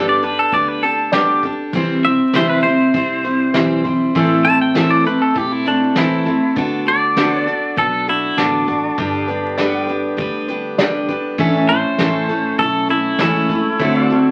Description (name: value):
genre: honky-tonk and classic country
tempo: 100 BPM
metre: 4/4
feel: straight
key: G major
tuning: A4 = 440 Hz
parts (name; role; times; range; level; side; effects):
- twangy electric guitar; melody; 0.0-14.3 s; D4 to A5; -20 LUFS; equal; none
- picked steel-string acoustic guitar; accompaniment; 0.0-14.3 s; A2 to C5; -20 LUFS; equal; none
- warm upright piano; accompaniment; 0.0-13.7 s; C#4 to D5; -28 LUFS; equal; none
- pedal steel guitar; sustained chords; 0.0-14.3 s; C#4 to G5; -28 LUFS; equal; none
- upright bass; bass; 0.0-14.3 s; E1 to D2; -34 LUFS; equal; none
- soft brush drum kit; drums; 0.2-14.2 s; hi-hat, kick drum, snare drum; -26 LUFS; equal; none
- hand-pumped harmonium; sustained chords; 9.0-14.3 s; D3 to F#4; -30 LUFS; equal; none
room: wet club reverb, RT60 0.5 s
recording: very old 78 rpm record, vinyl crackle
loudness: -17 LUFS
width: mono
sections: 0.0-14.3 A section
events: clean electric guitar solo 0.0-14.3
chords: 0.0 Gadd9; 1.7 C; 4.2 Am; 6.6 D6; 9.0 G; 11.4 A; 13.8 D7